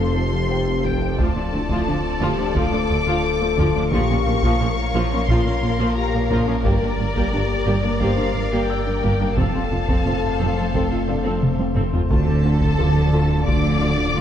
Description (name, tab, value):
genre	cinematic, hybrid orchestral and electronic film score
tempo	88 BPM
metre	4/4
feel	straight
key	D minor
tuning	A4 = 440 Hz
part	rich symphonic violin section	melody	0.0-14.2 s	D5 to D6	-28 LUFS	left 4 dB	none
part	rich symphonic violin section	second line	0.0-14.2 s	A4 to F5	-29 LUFS	left 2 dB	none
part	dark symphonic viola section	accompaniment	0.0-14.2 s	F3 to A4	-28 LUFS	right 1 dB	none
part	metallic inharmonic drone	sustained chords	0.0-14.2 s	F3 to D5	-29 LUFS	left 2 dB	chorus, built-in reverb
part	warm French horn section	sustained chords	0.0-14.2 s	E3 to C5	-29 LUFS	left 6 dB	none
part	soft round pluck	arpeggios	0.0-14.2 s	D3 to Bb4	-30 LUFS	left 4 dB	chorus
part	dark symphonic double bass section	bass	0.0-14.2 s	F1 to D2	-26 LUFS	right 2 dB	none
part	mellow tuba	bass	0.0-14.2 s	F1 to D2	-28 LUFS	right 2 dB	none
part	sub bass with octave	bass	0.0-14.2 s	D1 to Bb1	-27 LUFS	equal	none
part	warm symphonic cello section	bass	0.0-14.2 s	D2 to D3	-27 LUFS	right 2 dB	none
part	felt-muted upright piano	texture	0.0-14.2 s	D4 to E6	-37 LUFS	right 1 dB	none
part	taiko ensemble	drums	0.9-14.1 s	none	-25 LUFS	equal	none
room	moderate scoring stage reverb, RT60 1.5 s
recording	dark, warm production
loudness	-18 LUFS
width	side -10 dB against mid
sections	0.0-12.1 A section; 12.1-14.2 B section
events	drum fill 11.4-12.1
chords	0.0 F; 1.2 Dm; 3.9 Bbm; 6.6 Gm; 9.4 F; 12.1 Dm